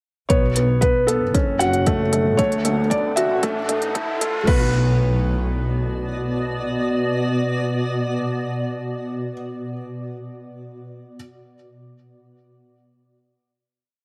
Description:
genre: piano and strings electronica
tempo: 115 BPM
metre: 4/4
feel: straight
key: B minor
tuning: A4 = 440 Hz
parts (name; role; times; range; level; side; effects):
- felt-muted upright piano; melody; 0.3-9.3 s; A4 to F#5; -27 LUFS; equal; delay
- granular cloud pad; sustained chords; 2.3-9.4 s; B2 to F#5; -28 LUFS; equal; built-in reverb, sidechain pumping
- felt-muted upright piano; riff; 0.3-11.2 s; A3 to F#4; -25 LUFS; equal; delay
- dark chamber double bass section; bass; 0.3-6.0 s; F#1 to D2; -26 LUFS; equal; sidechain pumping
- electronic kick drum; drums; 0.3-4.6 s; none; -23 LUFS; equal; none
- organic electronic drum kit; drums; 0.3-4.6 s; crash cymbal, hi-hat; -32 LUFS; equal; none
- riser; sound effects; 1.4-4.5 s; none; -34 LUFS; equal; none
room: moderate lush hall reverb, RT60 1.8 s, studio ambience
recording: high-pass filter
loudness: -21 LUFS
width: mono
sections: 0.3-4.5 build; 4.5-8.6 final chord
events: build-up 0.3-4.5; filter sweep 0.3-4.5; riser 1.4-4.5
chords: 0.3 Bsus2; 1.3 F#m; 2.4 D; 3.4 Aadd9; 4.5 Bm

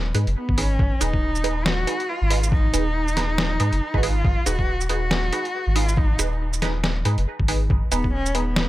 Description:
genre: deep dubstep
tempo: 139 BPM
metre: 4/4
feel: swing 59% on 16ths, half-time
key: G# dorian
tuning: A4 = 439 Hz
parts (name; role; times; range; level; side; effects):
- soft dub sub bass; bass; 0.0-8.7 s; D#1 to G#2; -23 LUFS; equal; none
- filtered dub chord stab; stabs; 0.1-8.4 s; D#4 to B4; -29 LUFS; right 4 dB; phaser, dub echo
- trip hop sampler-style drum kit; drums; 0.1-8.7 s; hi-hat, shaker, snare drum; -25 LUFS; equal; overdrive
- warm cello; melody; 0.4-8.7 s; B3 to F#4; -27 LUFS; equal; vintage 12-bit sampler grit, dub echo
- electronic kick drum; drums; 0.5-8.1 s; none; -22 LUFS; equal; overdrive
room: little or no reverb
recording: none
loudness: -19 LUFS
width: side -16 dB against mid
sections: 0.0-8.7 A section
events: none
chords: 0.0 G#m

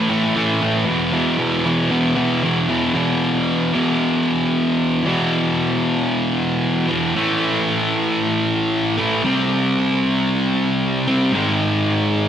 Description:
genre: rock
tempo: 114 BPM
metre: 4/4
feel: straight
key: unclear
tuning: A4 = 441 Hz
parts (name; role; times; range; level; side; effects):
- thick fuzz guitar; solo; 0.0-12.3 s; E2 to C4; -16 LUFS; equal; distortion, slapback echo, analog delay
room: wet lush hall reverb, RT60 2.7 s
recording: big arena sound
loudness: -16 LUFS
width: side -9 dB against mid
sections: 0.0-3.0 A section; 3.0-5.0 B section; 5.0-12.3 C section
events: none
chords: 0.0 A5; 0.9 E5; 7.1 A5; 9.2 C5; 11.3 G#5

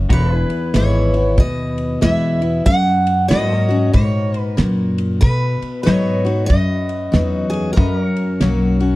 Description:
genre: honky-tonk and classic country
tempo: 94 BPM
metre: 4/4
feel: swing 62% on 8ths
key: B major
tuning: A4 = 442 Hz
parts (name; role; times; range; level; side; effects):
- picked steel-string acoustic guitar; accompaniment; 0.0-9.0 s; E2 to F#4; -19 LUFS; left 2 dB; none
- pedal steel guitar; sustained chords; 0.0-9.0 s; E4 to D#5; -31 LUFS; equal; none
- upright bass; bass; 0.0-9.0 s; E1 to B2; -19 LUFS; equal; none
- picked steel-string acoustic guitar; melody; 0.1-9.0 s; G#4 to F#5; -22 LUFS; right 2 dB; none
- damped 70s drum kit; drums; 0.1-8.9 s; kick drum, ride cymbal, snare drum; -16 LUFS; equal; none
room: little or no reverb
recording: dry, close 1970s-style studio recording, faint mains hum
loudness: -14 LUFS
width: side -18 dB against mid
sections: 0.0-9.0 A section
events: none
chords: 0.1 E; 2.7 F#; 5.2 B; 7.8 F#

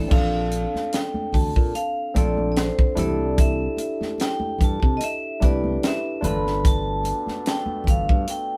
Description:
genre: lush 1970s-style soul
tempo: 74 BPM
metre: 4/4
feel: swing 54% on 16ths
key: unclear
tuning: A4 = 438 Hz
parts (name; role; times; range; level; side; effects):
- vibraphone with hard mallets; melody; 0.0-8.6 s; C5 to B5; -31 LUFS; equal; none
- barky tine electric piano; accompaniment; 0.0-8.6 s; Bb3 to B4; -30 LUFS; equal; none
- modern bright fingered electric bass; bass; 0.0-8.3 s; G1 to C3; -29 LUFS; equal; none
- tight funk drum kit; drums; 0.1-8.5 s; crash cymbal, hi-hat, kick drum, snare drum; -23 LUFS; equal; none
- congas; percussion; 0.1-8.1 s; none; -34 LUFS; equal; none
- clear trombone section; stabs; 6.6-8.6 s; B2 to D4; -39 LUFS; equal; none
room: moderate studio reverb, RT60 0.6 s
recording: band playing live in one room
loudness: -23 LUFS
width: mono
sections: 0.1-8.6 A section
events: none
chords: 0.1 Bbmaj7; 3.0 C69; 6.2 G9

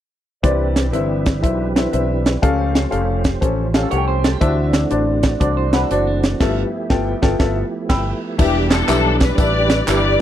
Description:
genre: uptempo gospel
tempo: 120 BPM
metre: 4/4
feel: swing 66% on 8ths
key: C major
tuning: A4 = 441 Hz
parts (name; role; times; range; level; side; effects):
- warm upright piano; accompaniment; 0.4-10.2 s; G2 to E6; -21 LUFS; left 4 dB; none
- mellow French horn section; sustained chords; 0.4-8.4 s; F3 to E5; -32 LUFS; right 4 dB; none
- tonewheel organ; sustained chords; 0.4-10.2 s; E3 to D5; -26 LUFS; right 4 dB; slow rotary speaker, chorus vibrato
- modern bright fingered electric bass; bass; 0.4-10.2 s; E1 to D2; -21 LUFS; equal; none
- tight funk drum kit; drums; 0.4-10.0 s; crash cymbal, hi-hat, kick drum, snare drum; -18 LUFS; right 1 dB; none
- clean electric guitar; second line; 3.7-6.4 s; D4 to D5; -26 LUFS; right 11 dB; none
- warm studio string section; melody; 8.4-10.2 s; B3 to D5; -18 LUFS; left 2 dB; none
- tambourine and handclaps; percussion; 8.4-10.0 s; none; -26 LUFS; right 2 dB; none
room: little or no reverb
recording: dry, close 1970s-style studio recording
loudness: -15 LUFS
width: side -11 dB against mid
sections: 0.4-8.4 A section; 8.4-10.2 B section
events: band accent 6.4-8.4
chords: 0.4 Cmaj9; 2.4 A7alt; 4.4 D9; 6.4 G13; 8.4 Em7

